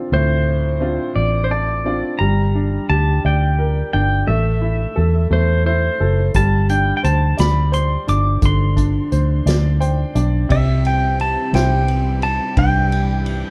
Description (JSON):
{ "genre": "folk", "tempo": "58 BPM (dotted quarters)", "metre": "6/8", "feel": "straight", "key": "C major", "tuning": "A4 = 440 Hz", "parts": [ { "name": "bright upright piano", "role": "accompaniment", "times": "0.0-13.5 s", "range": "G2 to A5", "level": "-25 LUFS", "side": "equal", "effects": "none" }, { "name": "pedal steel guitar", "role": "melody", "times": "0.1-13.5 s", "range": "C5 to D6", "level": "-24 LUFS", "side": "equal", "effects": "none" }, { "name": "vintage muted fingered electric bass", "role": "bass", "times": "0.1-13.4 s", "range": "F#1 to E2", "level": "-19 LUFS", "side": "equal", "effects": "none" }, { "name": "unplugged drum kit", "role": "drums", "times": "6.3-13.4 s", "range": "hi-hat, kick drum, ride cymbal, snare drum", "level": "-26 LUFS", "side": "equal", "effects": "none" }, { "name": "warm chamber string section", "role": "sustained chords", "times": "10.5-13.5 s", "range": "E3 to G4", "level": "-30 LUFS", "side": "equal", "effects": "none" } ], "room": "light reverb", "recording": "dark, warm production", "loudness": "-17 LUFS", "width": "mono", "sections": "0.0-2.2 A section; 2.2-10.5 B section; 10.5-13.5 C section", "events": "none", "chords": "0.0 Dm7; 2.2 Gm; 4.3 Am; 6.4 Gsus4; 10.5 C", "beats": "| 0.13 1.16 | 2.21 3.25 | 4.28 5.32 | 6.35 7.39 | 8.43 9.46 | 10.50 11.54 | 12.57" }